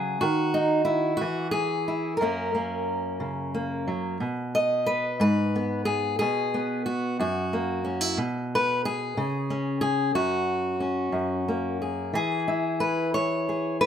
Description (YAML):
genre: folk, solo fingerstyle acoustic guitar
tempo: 60 BPM (dotted quarters)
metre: 6/8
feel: straight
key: unclear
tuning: A4 = 439 Hz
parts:
  - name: fingerpicked steel-string acoustic guitar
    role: solo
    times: 0.0-13.9 s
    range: F#2 to D#5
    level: -24 LUFS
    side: equal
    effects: none
room: light reverb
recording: none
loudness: -24 LUFS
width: side -8 dB against mid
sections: 0.0-12.2 A section; 12.2-13.9 B section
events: none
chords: 0.2 N.C.; 2.2 F#; 4.2 N.C.; 5.2 G#m; 6.2 N.C.; 7.2 F#7; 8.2 N.C.; 10.1 F#5; 11.1 F#add9; 12.2 E6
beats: | 0.22 1.21 | 2.21 3.21 | 4.21 5.21 | 6.21 7.20 | 8.18 9.17 | 10.15 11.14 | 12.15 13.15